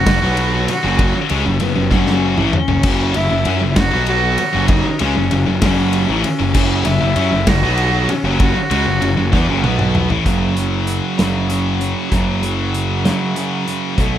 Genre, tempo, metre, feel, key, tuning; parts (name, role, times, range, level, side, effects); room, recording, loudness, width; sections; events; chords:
quiet-loud alternative rock; 65 BPM (dotted quarters); 6/8; straight; A4 = 440 Hz
rich cello; melody; 0.0-9.6 s; B3 to F#4; -20 LUFS; left 1 dB; slapback echo, plate reverb
heavy high-gain guitar; riff; 0.0-14.2 s; F#2 to C#4; -22 LUFS; left 8 dB; distortion
thick fuzz guitar; riff; 0.0-14.2 s; F#2 to C#4; -21 LUFS; right 5 dB; distortion
fuzz picked electric bass; bass; 0.0-14.2 s; F#1 to F#2; -19 LUFS; equal; overdrive
loose indie drum kit; drums; 0.1-14.1 s; crash cymbal, hi-hat, kick drum, ride cymbal, snare drum, toms; -20 LUFS; equal
fingerpicked steel-string acoustic guitar; arpeggios; 10.2-14.2 s; F#2 to A3; -24 LUFS; equal; slapback echo
light reverb; -14 LUFS; side -11 dB against mid
0.0-10.3 A section; 10.3-14.2 B section
drum fill 1.9-2.8, 9.3-10.3
0.0 F#m; 10.3 F#5